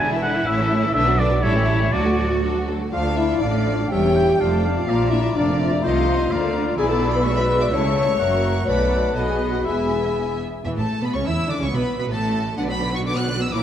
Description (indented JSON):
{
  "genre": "quick classical-period movement for symphony orchestra",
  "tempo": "125 BPM",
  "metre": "2/4",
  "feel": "straight",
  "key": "D minor, A major from 6.8 s",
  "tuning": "A4 = 440 Hz",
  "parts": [
    { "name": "clear chamber violin section", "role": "melody", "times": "0.0-13.6 s", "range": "F#4 to F#6", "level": "-31 LUFS", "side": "left 1 dB", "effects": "none" },
    { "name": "clear chamber violin section", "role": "second line", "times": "0.0-13.6 s", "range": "B3 to D6", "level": "-31 LUFS", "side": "left 1 dB", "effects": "none" },
    { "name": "clear oboe", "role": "second line", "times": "0.0-10.4 s", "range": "C5 to G5", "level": "-27 LUFS", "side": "equal", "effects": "none" },
    { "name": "rich studio viola section", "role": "accompaniment", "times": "0.0-13.6 s", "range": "D3 to G4", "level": "-26 LUFS", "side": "equal", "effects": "none" },
    { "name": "rich studio cello section", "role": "bass", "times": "0.0-13.6 s", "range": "D2 to F#4", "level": "-26 LUFS", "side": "right 1 dB", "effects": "none" },
    { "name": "rich symphonic double bass section", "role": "bass", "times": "0.0-13.6 s", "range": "E1 to E2", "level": "-25 LUFS", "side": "right 2 dB", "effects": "none" },
    { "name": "mellow clarinet", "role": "second line", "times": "2.9-10.4 s", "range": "C#5 to F5", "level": "-32 LUFS", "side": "left 4 dB", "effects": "none" },
    { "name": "small flute group", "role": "second line", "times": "2.9-10.4 s", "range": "F5 to C6", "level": "-30 LUFS", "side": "left 2 dB", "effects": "none" },
    { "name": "warm French horn section", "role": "sustained chords", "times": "2.9-10.4 s", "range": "D4 to D5", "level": "-22 LUFS", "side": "left 3 dB", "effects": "none" }
  ],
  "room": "wet concert hall reverb, RT60 2.1 s",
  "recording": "dark, warm production",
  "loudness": "-18 LUFS",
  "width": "side -10 dB against mid",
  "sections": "0.0-2.9 A section; 2.9-10.7 B section; 10.7-13.6 C section",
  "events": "none",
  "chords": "0.0 E7; 0.5 A; 0.9 Bm; 1.4 A7; 1.9 D; 2.9 Dm; 3.9 C#dim/E; 4.4 Dm/F; 4.9 Bb; 5.8 Adim/C; 6.3 Bb/D; 6.8 E7/B; 7.7 A/C#; 8.2 F#7; 8.7 Bm7; 9.2 B; 9.7 E; 10.7 A; 11.6 Bsus2; 12.1 N.C.; 12.6 Bm"
}